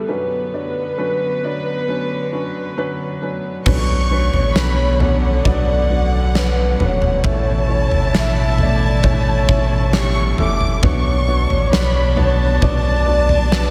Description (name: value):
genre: pop ballad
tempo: 67 BPM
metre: 4/4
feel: straight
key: B minor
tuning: A4 = 440 Hz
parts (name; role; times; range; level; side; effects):
- warm velvety synth lead; melody; 0.0-13.7 s; A4 to E5; -25 LUFS; equal; chorus
- felt-muted upright piano; accompaniment; 0.0-13.7 s; B1 to E5; -28 LUFS; equal; none
- warm studio string section; sustained chords; 0.0-13.7 s; B2 to B4; -28 LUFS; equal; none
- dark studio violin section; second line; 3.7-13.7 s; F#5 to D6; -28 LUFS; equal; none
- warm sub bass; bass; 3.7-13.7 s; E1 to B1; -21 LUFS; equal; none
- huge arena drum kit; drums; 3.7-13.7 s; crash cymbal, kick drum, snare drum, toms; -22 LUFS; equal; none
room: moderate cathedral reverb, RT60 5.3 s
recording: dreamy mix soaked in reverb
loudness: -17 LUFS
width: mono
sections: 0.0-3.7 A section; 3.7-13.7 B section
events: none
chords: 0.1 Bmadd9; 7.2 A; 10.8 Bmadd9